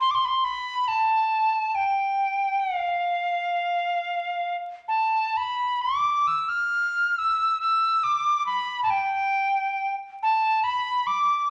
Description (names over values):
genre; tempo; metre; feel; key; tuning
celtic folk; 62-72 BPM; 3/4; rubato; unclear; A4 = 440 Hz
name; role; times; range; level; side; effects
bright reedy mid whistle; solo; 0.0-11.5 s; F5 to F6; -24 LUFS; equal; none
room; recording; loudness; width
wet large studio reverb, RT60 1.2 s; vinyl crackle; -24 LUFS; mono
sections
0.0-5.4 A section; 5.4-11.5 B section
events
none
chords
none